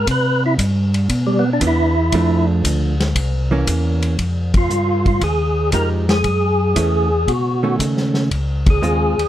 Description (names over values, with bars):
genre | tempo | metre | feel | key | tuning
soul jazz organ trio | 116 BPM | 4/4 | swing 69% on 8ths | F minor from 4.2 s | A4 = 440 Hz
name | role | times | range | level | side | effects
percussive tonewheel organ | melody | 0.0-9.3 s | G3 to B4 | -18 LUFS | equal | slow rotary speaker, overdrive, chorus vibrato
mellow tonewheel organ | bass | 0.0-9.3 s | C2 to C#3 | -18 LUFS | equal | slow rotary speaker
vintage drum kit | drums | 0.1-9.3 s | hi-hat, kick drum, ride cymbal, snare drum | -22 LUFS | equal | none
hollow-body jazz guitar | accompaniment | 1.6-9.2 s | D#3 to G4 | -21 LUFS | right 4 dB | none
room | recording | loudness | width
light reverb | none | -15 LUFS | side -12 dB against mid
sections
0.0-4.2 A section; 4.2-9.3 B section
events
tonewheel organ solo 0.0-4.2; band accent 4.4, 8.6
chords
0.1 Cmaj9; 2.1 Dm; 3.2 C7b9; 4.2 Fm9; 6.2 Gbm7; 7.3 B9; 8.3 Dbmaj7